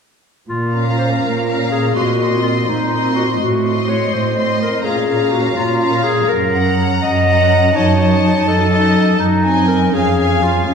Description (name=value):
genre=classical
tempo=83 BPM (dotted quarters)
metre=6/8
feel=rubato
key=Bb minor, Db major from 6.3 s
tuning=A4 = 439 Hz
part: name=bright clarinet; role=second line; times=0.5-10.7 s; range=Db4 to Eb5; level=-17 LUFS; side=left 3 dB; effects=none
part: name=warm symphonic cello section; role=bass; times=0.5-10.7 s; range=F2 to Bb2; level=-17 LUFS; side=right 2 dB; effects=none
part: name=warm symphonic violin section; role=melody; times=0.7-10.7 s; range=Ab5 to C6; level=-22 LUFS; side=left 3 dB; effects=none
part: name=warm symphonic viola section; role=accompaniment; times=0.7-10.7 s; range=C4 to Eb4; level=-22 LUFS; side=right 2 dB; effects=none
part: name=warm symphonic violin section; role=second line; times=0.8-10.7 s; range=Eb5 to Gb5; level=-24 LUFS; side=left 1 dB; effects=none
room=wet scoring stage reverb, RT60 1.9 s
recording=heard from further back in the room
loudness=-13 LUFS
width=side -6 dB against mid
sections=0.5-10.7 A section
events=none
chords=0.5 Bbm; 2.0 Cm7b5/Bb; 3.4 Adim7; 4.8 Bbm; 6.3 Gb; 7.8 Ebm7b5/Gb; 9.2 Ab7/Gb; 9.9 Db/F